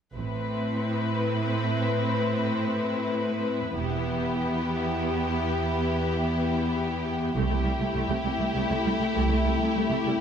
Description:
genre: cinematic.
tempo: 67 BPM (dotted quarters).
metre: 6/8.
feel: straight.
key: A minor.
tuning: A4 = 440 Hz.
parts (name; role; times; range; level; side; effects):
dark French horn section; sustained chords; 0.1-10.2 s; A3 to B4; -32 LUFS; left 4 dB; none.
rich symphonic cello section; bass; 0.1-10.1 s; C2 to A2; -29 LUFS; right 2 dB; none.
rich symphonic violin section; melody; 0.2-10.2 s; G4 to B4; -33 LUFS; left 4 dB; none.
rich studio violin section; second line; 0.2-10.2 s; E4; -33 LUFS; left 1 dB; none.
warm symphonic viola section; accompaniment; 0.2-10.1 s; G3 to C4; -33 LUFS; right 1 dB; none.
clear symphonic double bass section; bass; 0.2-0.7, 3.8-4.3, 7.4-9.3 s; E1 to C2; -30 LUFS; right 3 dB; none.
room: moderate scoring stage reverb, RT60 2.0 s.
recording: none.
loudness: -24 LUFS.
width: side -8 dB against mid.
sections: 0.1-10.2 A section.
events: none.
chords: 0.1 Amadd9; 3.8 Em; 7.4 C6.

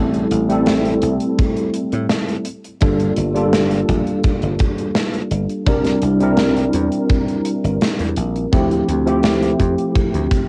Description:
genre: vaporwave.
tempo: 84 BPM.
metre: 4/4.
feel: straight.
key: G dorian.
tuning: A4 = 440 Hz.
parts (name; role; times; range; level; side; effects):
tine electric piano; accompaniment; 0.0-10.5 s; F3 to Bb4; -20 LUFS; equal; ensemble chorus, vintage 12-bit sampler grit, cassette tape, tape echo.
dry thumbed slap bass; bass; 0.0-10.3 s; G1 to A2; -24 LUFS; equal; tube saturation.
gated 80s drum kit; drums; 0.1-10.5 s; hi-hat, snare drum; -23 LUFS; equal; none.
kick drum; drums; 1.4-10.5 s; none; -21 LUFS; equal; none.
room: moderate booth ambience, RT60 0.2 s.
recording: home recording on cassette.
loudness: -18 LUFS.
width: mono.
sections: 0.0-10.5 A section.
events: none.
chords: 0.0 Am7; 2.5 Gm9; 5.7 C9; 8.5 Dm11.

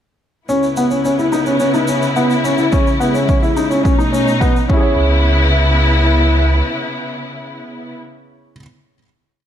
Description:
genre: piano and strings electronica.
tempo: 107 BPM.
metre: 4/4.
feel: straight.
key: C# minor.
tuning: A4 = 439 Hz.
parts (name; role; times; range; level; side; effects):
warm symphonic string section; sustained chords; 0.5-8.0 s; B2 to E4; -18 LUFS; left 1 dB; sidechain pumping.
dark baby grand piano; riff; 0.5-8.6 s; B3 to C#5; -16 LUFS; equal; digital delay.
warm sub bass; bass; 0.5-6.6 s; B1 to E2; -18 LUFS; right 1 dB; sidechain pumping, high-pass filter.
shaker; drums; 0.5-4.7 s; none; -34 LUFS; right 1 dB; none.
electronic kick drum; drums; 2.7-4.8 s; none; -16 LUFS; right 1 dB; none.
room: moderate echo chamber reverb, RT60 1.4 s, studio ambience.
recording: none.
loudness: -12 LUFS.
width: side -9 dB against mid.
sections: 0.5-5.0 build; 5.0-7.2 final hit.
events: build-up 0.5-5.0.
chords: 0.5 C#m7; 2.7 E6; 3.9 B7; 4.7 C#m7.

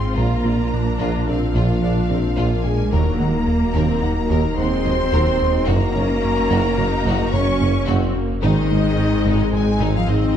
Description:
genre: cinematic, hybrid orchestral and electronic film score.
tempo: 109 BPM.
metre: 5/4.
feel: straight.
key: Eb dorian.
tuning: A4 = 441 Hz.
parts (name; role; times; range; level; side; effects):
clear symphonic violin section; second line; 0.0-10.4 s; Eb5 to Db6; -28 LUFS; left 4 dB; none.
warm studio viola section; accompaniment; 0.0-10.4 s; Gb3 to F4; -29 LUFS; right 1 dB; none.
warbly tape-like pad; sustained chords; 0.0-10.4 s; Ab3 to C5; -29 LUFS; left 1 dB; none.
round analog bass; riff; 0.0-10.2 s; Eb2 to Bb3; -24 LUFS; right 1 dB; none.
dark symphonic cello section; bass; 0.0-10.4 s; Eb3 to Db4; -25 LUFS; right 2 dB; none.
sub bass with octave; bass; 0.0-10.4 s; Eb1 to Bb1; -25 LUFS; left 1 dB; none.
warm symphonic violin section; melody; 0.2-10.2 s; Eb4 to Gb5; -32 LUFS; left 6 dB; none.
mellow French horn section; sustained chords; 0.2-10.4 s; Eb4 to Db5; -26 LUFS; left 2 dB; none.
warm trombone section; sustained chords; 0.2-10.4 s; Eb3 to Eb4; -29 LUFS; right 2 dB; none.
soft round pluck; arpeggios; 0.2-10.2 s; Eb3 to Bb4; -32 LUFS; left 3 dB; none.
warm symphonic double bass section; bass; 0.2-10.2 s; Gb1 to Eb2; -26 LUFS; right 3 dB; none.
warm tuba; bass; 0.2-10.2 s; Gb1 to Eb2; -28 LUFS; right 2 dB; none.
room: moderate scoring stage reverb, RT60 1.7 s.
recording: dark, warm production.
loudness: -16 LUFS.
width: side -9 dB against mid.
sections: 0.0-10.4 A section.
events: none.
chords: 0.2 Bb; 2.9 Ebm; 5.7 Gb; 8.4 Ab.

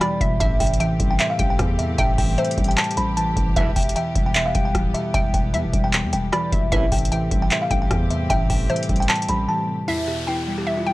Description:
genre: hip hop, trap.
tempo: 152 BPM.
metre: 4/4.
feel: half-time.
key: unclear.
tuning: A4 = 440 Hz.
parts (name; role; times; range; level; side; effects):
buzzing kalimba; melody; 0.0-10.9 s; E4 to B5; -26 LUFS; equal; low-pass filter.
hollow square pluck; second line; 0.0-10.9 s; C5 to G5; -27 LUFS; equal; chorus, tape echo.
muted felt-like synth keys; accompaniment; 0.0-10.9 s; E2 to G3; -26 LUFS; equal; chorus, low-pass filter.
warm symphonic string section; sustained chords; 0.0-10.9 s; E3 to G4; -33 LUFS; left 1 dB; none.
booming analog drum machine; drums; 0.0-9.4 s; handclaps, hi-hat, kick drum, rim click; -22 LUFS; equal; none.
growling 808-style bass; bass; 0.2-9.5 s; D1 to E2; -25 LUFS; equal; none.
mellow brass ensemble; stabs; 3.6-3.7, 6.7-6.8 s; B1 to E3; -30 LUFS; right 1 dB; tape echo.
downlifter; sound effects; 9.9-10.9 s; none; -31 LUFS; left 2 dB; none.
room: little or no reverb.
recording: dry, gritty hardware recording, transformer saturation.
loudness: -18 LUFS.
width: side -18 dB against mid.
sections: 0.0-9.9 A section; 9.9-10.9 B section.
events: break 9.5-9.9.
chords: 0.4 Am7; 3.6 Em; 6.7 Am7; 9.9 Em.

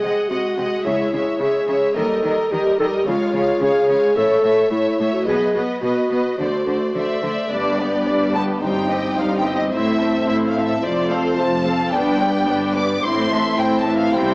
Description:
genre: cinematic.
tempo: 108 BPM.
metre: 4/4.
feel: straight.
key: G mixolydian from 7.5 s.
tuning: A4 = 440 Hz.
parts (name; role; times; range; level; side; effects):
rich studio violin section; melody; 0.0-14.3 s; C5 to D6; -24 LUFS; left 1 dB; none.
dark clarinet; second line; 0.0-7.2 s; E4 to A4; -19 LUFS; equal; none.
dark symphonic violin section; second line; 0.0-14.3 s; Eb4 to F5; -24 LUFS; left 1 dB; none.
warm symphonic viola section; accompaniment; 0.0-14.3 s; E3 to A4; -25 LUFS; equal; none.
rich symphonic cello section; bass; 0.0-14.3 s; F2 to D#3; -26 LUFS; equal; none.
rich symphonic double bass section; bass; 0.9-14.3 s; F1 to D#2; -30 LUFS; equal; none.
mellow French horn section; sustained chords; 7.5-14.3 s; B3 to F4; -22 LUFS; equal; none.
timpani; percussion; 8.6-9.4 s; G2; -32 LUFS; equal; none.
room: moderate scoring stage reverb, RT60 1.5 s.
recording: small speaker sound.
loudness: -16 LUFS.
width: side -25 dB against mid.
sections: 0.0-7.5 A section; 7.5-14.3 B section.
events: none.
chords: 0.0 G#7/B#; 0.9 C#m; 2.0 D#; 3.1 C#; 4.2 A; 5.3 B; 6.4 D7; 7.5 G; 8.6 Cm/G; 9.7 Am; 10.8 F; 11.9 G; 13.0 Am.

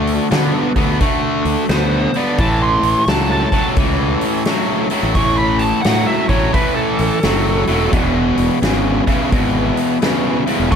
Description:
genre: blues rock power trio and southern rock.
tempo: 86 BPM.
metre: 4/4.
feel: swing 64% on 8ths.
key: A major.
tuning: A4 = 440 Hz.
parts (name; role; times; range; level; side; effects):
overdriven tonewheel organ; sustained chords; 0.0-10.8 s; A3 to C#5; -28 LUFS; right 2 dB; none.
distorted electric guitar; riff; 0.0-10.8 s; E2 to B3; -17 LUFS; left 1 dB; overdrive.
fuzz fingered electric bass; bass; 0.0-10.8 s; E1 to D3; -20 LUFS; equal; overdrive.
huge arena drum kit; drums; 0.1-10.8 s; hi-hat, kick drum, snare drum; -20 LUFS; equal; none.
fuzz lead guitar; melody; 1.7-10.8 s; A4 to C#6; -20 LUFS; right 2 dB; distortion.
room: light reverb.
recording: none.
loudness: -14 LUFS.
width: side -7 dB against mid.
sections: 0.0-10.8 A section.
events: none.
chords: 0.0 D; 2.4 A; 7.9 E.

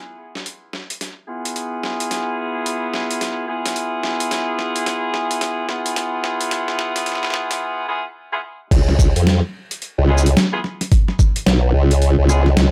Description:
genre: glitch hop.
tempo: 109 BPM.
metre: 4/4.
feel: swing 61% on 16ths.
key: unclear.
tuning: A4 = 439 Hz.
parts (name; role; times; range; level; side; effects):
boom bap sampler-style drum kit; drums; 0.4-12.7 s; crash cymbal, hi-hat, shaker, snare drum; -24 LUFS; equal; overdrive, high-pass filter on hats, studio reverb, high-pass filter on snare, high-pass filter on cymbals, high-pass filter on perc.
warm horn section; stabs; 1.3-12.4 s; Cb4 to Ab4; -25 LUFS; equal; sidechain pumping, low-pass filter, tape echo.
formant-sweep wobble bass; bass; 8.7-12.7 s; B1 to E#2; -16 LUFS; equal; chorus, overdrive.
electronic kick drum; drums; 8.7-11.3 s; none; -16 LUFS; equal; overdrive, studio reverb.
room: light reverb.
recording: high-pass filter.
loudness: -19 LUFS.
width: mono.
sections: 0.0-8.7 A section; 8.7-12.7 B section.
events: build-up 0.0-8.7; drum fill 0.0-7.6; filter sweep on horn section 0.0-8.7; break 7.6-8.7; drop 8.7-12.7.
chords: 0.0 Fdim/Cb; 8.7 C#7.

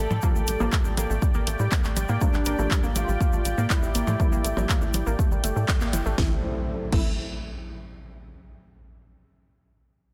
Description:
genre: melodic techno.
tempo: 121 BPM.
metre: 4/4.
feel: straight.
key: unclear.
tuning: A4 = 440 Hz.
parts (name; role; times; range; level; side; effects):
expressive portamento lead; melody; 0.0-7.1 s; D4 to A4; -36 LUFS; equal; ensemble chorus, sidechain pumping, dub echo.
sweeping resonant pad; sustained chords; 0.0-6.4 s; A3 to G5; -37 LUFS; equal; chorus, sidechain pumping.
warbly dusty pluck; arpeggios; 0.0-7.2 s; G3 to E4; -36 LUFS; equal; chorus, sidechain pumping, dub echo.
filtered dub chord stab; stabs; 0.0-7.1 s; E3 to C4; -38 LUFS; equal; chorus, sidechain pumping, dub echo.
tight sequencer bass; bass; 0.0-7.2 s; G1 to A2; -30 LUFS; equal; sidechain pumping.
techno drum kit; drums; 0.1-7.0 s; crash cymbal, handclaps, hi-hat, percussion blips, snare drum; -33 LUFS; equal; none.
egg shaker; percussion; 0.1-6.2 s; none; -42 LUFS; equal; none.
electronic kick drum; drums; 0.2-7.0 s; none; -26 LUFS; equal; none.
impact; sound effects; 6.2-8.2 s; none; -37 LUFS; equal; none.
room: light reverb, digital ambience.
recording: dense, heavily limited modern master.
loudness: -24 LUFS.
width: mono.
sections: 0.0-6.2 A section; 6.2-8.2 B section.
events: drop 0.0-6.2; band accent 5.7.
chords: 0.0 Gm7/A; 6.2 Am.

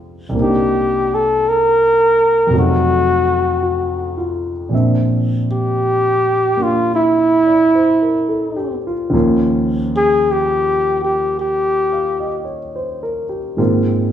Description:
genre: jazz.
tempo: 54 BPM.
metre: 4/4.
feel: swing 68% on 8ths.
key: unclear.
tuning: A4 = 435 Hz.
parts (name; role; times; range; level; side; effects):
warm concert grand piano; accompaniment; 0.0-14.1 s; C2 to G5; -18 LUFS; equal; none.
mellow flugelhorn; melody; 0.4-12.5 s; E4 to Bb4; -14 LUFS; equal; plate reverb.
room: wet large studio reverb, RT60 0.9 s.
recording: heard from further back in the room.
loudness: -14 LUFS.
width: side -9 dB against mid.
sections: 0.0-14.1 A section.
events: none.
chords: 0.3 Cm7; 2.5 F7b9; 4.7 Bbadd9; 9.1 Eb9; 13.6 Ab69.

